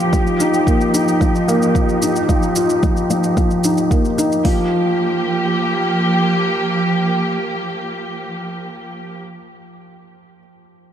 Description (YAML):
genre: piano and strings electronica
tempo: 111 BPM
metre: 4/4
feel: straight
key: G minor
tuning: A4 = 441 Hz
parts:
  - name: warm symphonic string section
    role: sustained chords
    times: 0.0-9.2 s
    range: F3 to G4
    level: -20 LUFS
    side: right 1 dB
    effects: low-pass filter
  - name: felt-muted upright piano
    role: riff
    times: 0.0-10.9 s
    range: F3 to F4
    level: -18 LUFS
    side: left 1 dB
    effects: digital delay
  - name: shaker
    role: drums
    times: 0.0-4.4 s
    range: none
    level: -27 LUFS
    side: right 1 dB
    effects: none
  - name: deep house drum kit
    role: drums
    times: 0.1-4.6 s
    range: hi-hat, kick drum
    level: -18 LUFS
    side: right 1 dB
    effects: none
room: light reverb, small room reverb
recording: none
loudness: -15 LUFS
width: side -9 dB against mid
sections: 0.0-4.5 A section; 4.5-8.8 B section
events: filter sweep on string section 0.0-4.5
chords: 0.1 Ebadd9; 4.5 Gm7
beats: | 0.13 0.67 1.21 1.75 | 2.29 2.83 3.37 3.91 | 4.45 4.99 5.53 6.07 | 6.61 7.15 7.69 8.23